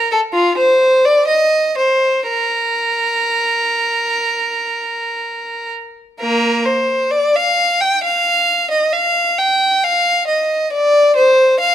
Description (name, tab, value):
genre	classical, baroque-style suite movement for unaccompanied violin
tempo	58-69 BPM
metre	4/4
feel	rubato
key	Bb major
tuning	A4 = 440 Hz
part	rich violin	solo	0.0-11.7 s	Bb3 to G5	-13 LUFS	equal	none
room	moderate recital hall reverb, RT60 1.5 s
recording	close, detailed microphones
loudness	-13 LUFS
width	side -10 dB against mid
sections	0.0-6.2 A section; 6.2-11.7 B section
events	none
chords	none